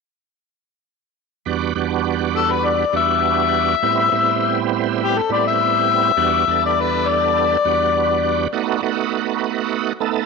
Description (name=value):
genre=straight-eighth soul blues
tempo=102 BPM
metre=4/4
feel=straight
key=E minor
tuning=A4 = 443 Hz
part: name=bright tonewheel organ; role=accompaniment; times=1.5-10.3 s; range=E2 to A4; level=-20 LUFS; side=right 12 dB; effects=overdrive, chorus vibrato, slow rotary speaker
part: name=overdriven harmonica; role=melody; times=2.4-8.5 s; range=G4 to E5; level=-17 LUFS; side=left 9 dB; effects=none
room=moderate plate reverb, RT60 3.2 s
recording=1960s-style stereo with parts hard left and right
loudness=-16 LUFS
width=side -4 dB against mid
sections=1.5-10.3 A section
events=none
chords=1.5 Em7; 3.8 Am7; 6.2 Em7; 8.5 B7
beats=| 1.46 2.05 2.64 3.23 | 3.82 4.41 5.00 5.59 | 6.18 6.77 7.36 7.95 | 8.54 9.13 9.72